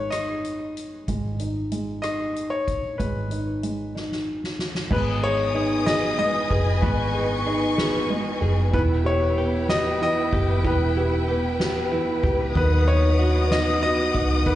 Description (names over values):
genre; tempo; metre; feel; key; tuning
six-eight pop ballad; 63 BPM (dotted quarters); 6/8; straight; unclear; A4 = 437 Hz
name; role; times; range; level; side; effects
bright concert grand piano; melody; 0.0-14.6 s; B4 to D#5; -27 LUFS; left 2 dB; plate reverb, slapback echo, tape echo
felt-muted upright piano; accompaniment; 0.0-14.6 s; D#3 to G#4; -27 LUFS; right 2 dB; plate reverb, slapback echo
vintage muted fingered electric bass; bass; 0.0-14.6 s; E1 to D#2; -25 LUFS; equal; none
soft-mallet drum kit; drums; 0.1-14.6 s; crash cymbal, hi-hat, kick drum, ride cymbal, rim click, snare drum; -29 LUFS; equal; none
warm studio string section; sustained chords; 4.9-14.6 s; E4 to D#6; -27 LUFS; left 1 dB; plate reverb
direct-recorded clean electric guitar; arpeggios; 4.9-14.6 s; F#3 to G#4; -33 LUFS; left 2 dB; plate reverb, slapback echo
room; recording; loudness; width
moderate club reverb, RT60 0.6 s; live gig heard through the venue's PA, club reverb, nothing above 10.3 kHz; -20 LUFS; side -13 dB against mid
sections
0.0-4.9 A section; 4.9-14.6 B section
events
drum fill 4.0-4.9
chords
0.0 G#m; 8.7 Em; 12.6 B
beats
0.12 | 1.08 2.04 | 3.00 3.96 | 4.91 5.87 | 6.83 7.78 | 8.74 9.69 | 10.64 11.60 | 12.55 13.51 | 14.46